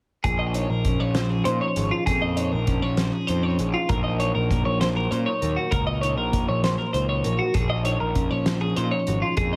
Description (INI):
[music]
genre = math rock and midwest emo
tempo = 66 BPM (dotted quarters)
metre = 6/8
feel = straight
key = unclear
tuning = A4 = 440 Hz
[part]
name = mellow electric guitar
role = accompaniment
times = 0.2-9.6 s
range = Bb2 to Bb4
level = -31 LUFS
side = equal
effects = none
[part]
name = twelve-string electric guitar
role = arpeggios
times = 0.2-9.6 s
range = F4 to Eb5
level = -28 LUFS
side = equal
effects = digital delay
[part]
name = fuzz picked electric bass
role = bass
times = 0.2-9.6 s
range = Ab1 to Bb2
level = -28 LUFS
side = equal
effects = overdrive
[part]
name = loose indie drum kit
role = drums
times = 0.2-9.5 s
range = hi-hat, kick drum, snare drum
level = -29 LUFS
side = equal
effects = none
[sound]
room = light reverb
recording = none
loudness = -24 LUFS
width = mono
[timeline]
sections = 0.2-9.6 A section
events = none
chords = 0.2 Bbm11; 3.9 Gb6/Bb; 7.5 Bbm11